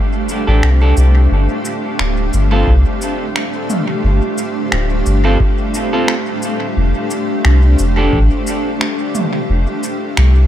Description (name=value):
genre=ambient dub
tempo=88 BPM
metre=4/4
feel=swing 55% on 16ths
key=unclear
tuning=A4 = 435 Hz
part: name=granular cloud pad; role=sustained chords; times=0.0-10.5 s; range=A3 to F5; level=-19 LUFS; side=equal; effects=built-in reverb, vintage 12-bit sampler grit
part: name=organic electronic drum kit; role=drums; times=0.3-10.3 s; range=cabasa, finger snaps, toms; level=-22 LUFS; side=equal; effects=overdrive, dub echo
part: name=clean electric guitar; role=stabs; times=0.5-8.2 s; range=C4 to A4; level=-22 LUFS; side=right 1 dB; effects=dub echo
part: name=soft dub sub bass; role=bass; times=0.5-10.5 s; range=D1 to C2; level=-11 LUFS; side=equal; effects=tube saturation
part: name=electronic kick drum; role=drums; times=2.7-8.3 s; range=none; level=-18 LUFS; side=equal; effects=overdrive
room=little or no reverb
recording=none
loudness=-12 LUFS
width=side -11 dB against mid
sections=0.0-1.3 A section; 1.3-10.5 B section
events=none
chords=0.0 F69; 1.3 G9sus4; 6.8 F69